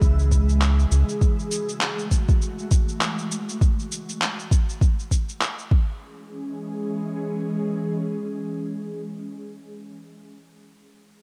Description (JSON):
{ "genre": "organic downtempo", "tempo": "100 BPM", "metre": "4/4", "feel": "swing 58% on 16ths", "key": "C# minor", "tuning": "A4 = 440 Hz", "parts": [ { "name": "ethereal airy pad", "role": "sustained chords", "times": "0.0-9.2 s", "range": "C#3 to G#4", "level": "-32 LUFS", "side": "equal", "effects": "ensemble chorus, built-in reverb, phaser, sidechain pumping" }, { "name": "round analog bass", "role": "bass", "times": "0.0-1.0 s", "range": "C#2", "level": "-20 LUFS", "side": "equal", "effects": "sidechain pumping" }, { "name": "electronic kick drum", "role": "drums", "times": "0.0-5.9 s", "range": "none", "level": "-22 LUFS", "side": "equal", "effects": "overdrive" }, { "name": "electronic shaker and handclaps", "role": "drums", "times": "0.0-5.7 s", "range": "none", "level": "-30 LUFS", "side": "equal", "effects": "overdrive" }, { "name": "twinkling granular texture", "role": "texture", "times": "0.0-1.2 s", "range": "E3 to E6", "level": "-47 LUFS", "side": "equal", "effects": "built-in reverb" } ], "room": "light reverb", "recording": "dark, warm production", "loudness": "-24 LUFS", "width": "mono", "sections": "0.0-6.0 A section; 6.0-8.4 B section", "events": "none", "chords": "0.0 C#m; 1.2 F#m9; 5.7 C#m" }